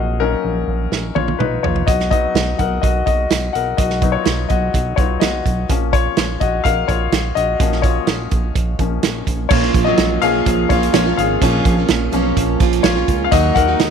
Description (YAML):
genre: piano-driven pop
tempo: 126 BPM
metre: 4/4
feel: straight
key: unclear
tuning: A4 = 440 Hz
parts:
  - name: clear concert grand piano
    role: accompaniment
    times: 0.0-13.9 s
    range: F3 to Gb5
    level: -19 LUFS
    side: left 9 dB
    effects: none
  - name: chorused synth bass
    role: bass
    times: 0.0-13.9 s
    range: Ab1 to Eb2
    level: -21 LUFS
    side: right 1 dB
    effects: none
  - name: natural country drum kit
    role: drums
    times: 0.9-13.9 s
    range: crash cymbal, hi-hat, kick drum, snare drum, toms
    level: -18 LUFS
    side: right 4 dB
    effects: none
  - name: picked plugged-in steel-string acoustic guitar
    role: riff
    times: 9.5-13.9 s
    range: Bb2 to Gb4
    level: -19 LUFS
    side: right 14 dB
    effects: none
room: light reverb, small room ambience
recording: 1960s-style stereo with parts hard left and right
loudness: -14 LUFS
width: side -7 dB against mid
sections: 0.0-9.5 A section; 9.5-13.9 B section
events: grand piano solo 0.0-9.5, 9.5-13.9; drum fill 0.9-1.9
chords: 0.0 Ebm/Bb; 1.9 B; 5.7 Bbm; 13.3 Ebm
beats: 0.44 0.92 1.40 | 1.88 2.35 2.83 3.31 | 3.78 4.26 4.74 5.22 | 5.69 6.17 6.65 7.12 | 7.60 8.08 8.55 9.03 | 9.51 9.98 10.46 10.94 | 11.41 11.89 12.37 12.84 | 13.32 13.80